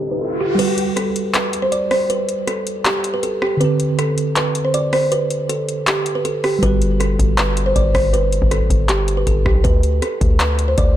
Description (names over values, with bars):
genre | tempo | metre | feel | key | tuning
hip hop, trap | 159 BPM | 4/4 | half-time | G major | A4 = 440 Hz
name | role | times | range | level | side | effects
kalimba | melody | 0.0-10.9 s | G4 to D5 | -20 LUFS | right 1 dB | low-pass filter
tine electric piano | accompaniment | 0.0-9.7 s | D3 to B4 | -23 LUFS | right 2 dB | medium stereo tremolo, low-pass filter
dark analog pad | sustained chords | 0.0-0.6 s | D3 to G4 | -38 LUFS | left 2 dB | chorus
riser | sound effects | 0.0-0.6 s | none | -26 LUFS | left 1 dB | none
booming analog drum machine | drums | 0.6-11.0 s | crash cymbal, handclaps, hi-hat, kick drum, rim click | -20 LUFS | left 1 dB | none
hard-hitting 808-style bass | bass | 6.6-11.0 s | G1 to D2 | -18 LUFS | left 1 dB | none
room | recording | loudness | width
little or no reverb | low-pass filter | -15 LUFS | side -12 dB against mid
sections
0.6-11.0 A section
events
riser 0.0-0.6; kick muted 0.6-6.6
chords
0.0 D7sus4; 0.6 Gmaj7; 3.6 D7sus4; 6.6 Gmaj7; 9.6 D5